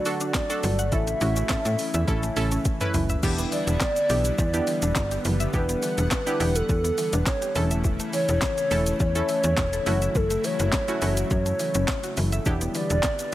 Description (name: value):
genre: dance-pop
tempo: 104 BPM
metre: 4/4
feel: straight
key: E dorian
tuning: A4 = 440 Hz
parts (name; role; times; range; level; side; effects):
- hollow clarinet-like synth lead; melody; 0.0-13.3 s; A4 to E5; -27 LUFS; equal; chorus
- lush unison pad; sustained chords; 0.0-13.3 s; C#3 to F#5; -32 LUFS; equal; chorus, sidechain pumping
- mallet-like synth pluck; arpeggios; 0.0-12.9 s; E3 to F#5; -35 LUFS; left 2 dB; chorus, sidechain pumping, digital delay
- analog pluck; accompaniment; 0.1-13.0 s; A3 to B4; -30 LUFS; right 2 dB; chorus, sidechain pumping
- smooth R&B drum kit; drums; 0.1-13.3 s; crash cymbal, handclaps, hi-hat, kick drum, shaker, snare drum, toms; -28 LUFS; equal; none
- slap-like FM bass; bass; 0.6-13.0 s; E1 to A2; -25 LUFS; equal; sidechain pumping
room: light reverb, digital ambience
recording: none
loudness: -22 LUFS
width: side -14 dB against mid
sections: 0.0-3.2 A section; 3.2-13.3 B section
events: drum fill 2.1-3.2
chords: 0.0 D; 0.9 A; 3.2 Em7; 7.6 A/E; 9.9 F#m7; 12.5 Em7